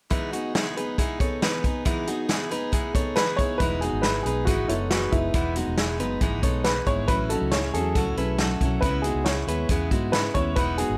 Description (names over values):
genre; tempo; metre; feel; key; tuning
jangly indie pop; 138 BPM; 4/4; straight; E major; A4 = 440 Hz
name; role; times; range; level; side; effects
picked steel-string acoustic guitar; accompaniment; 0.1-11.0 s; A2 to G#4; -32 LUFS; equal; none
direct-recorded clean electric guitar; arpeggios; 0.1-11.0 s; B3 to C#5; -33 LUFS; equal; slapback echo
vintage drum kit; drums; 0.1-10.9 s; hi-hat, kick drum, snare drum; -28 LUFS; equal; none
warm upright piano; melody; 3.2-11.0 s; E4 to C#5; -29 LUFS; equal; slapback echo
vintage muted fingered electric bass; bass; 3.6-11.0 s; E1 to G#2; -32 LUFS; equal; none
room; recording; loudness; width
light reverb; none; -25 LUFS; mono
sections
0.1-3.6 A section; 3.6-11.0 B section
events
none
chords
0.1 Emaj7; 7.1 A6; 8.8 C#m7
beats
| 0.11 0.55 0.98 1.42 | 1.86 2.29 2.73 3.17 | 3.60 4.04 4.47 4.91 | 5.34 5.78 6.21 6.65 | 7.08 7.52 7.96 8.39 | 8.82 9.26 9.70 10.13 | 10.57